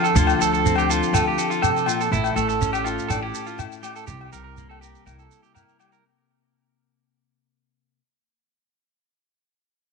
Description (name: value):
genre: highlife guitar band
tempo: 122 BPM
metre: 4/4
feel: straight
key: unclear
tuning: A4 = 440 Hz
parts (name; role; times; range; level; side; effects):
- clean electric guitar; accompaniment; 0.0-8.0 s; A2 to Bb4; -26 LUFS; left 12 dB; none
- electric guitar at the edge of break-up; arpeggios; 0.0-6.0 s; E4 to Bb4; -24 LUFS; right 10 dB; tape echo
- shekere; percussion; 0.0-6.0 s; none; -26 LUFS; right 5 dB; none
- upright bass; bass; 0.2-5.3 s; A1 to D2; -26 LUFS; equal; none
- agogo bells; percussion; 0.3-5.9 s; none; -27 LUFS; left 15 dB; none
room: moderate plate reverb, RT60 3.1 s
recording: 1960s-style stereo with parts hard left and right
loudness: -19 LUFS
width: side -4 dB against mid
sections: 0.0-6.0 A section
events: fade-out 0.0-6.0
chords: 0.0 Dm7; 2.1 A; 4.1 C7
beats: | 0.15 0.64 1.13 1.62 | 2.11 2.60 3.10 3.58 | 4.08 4.57 5.06 5.55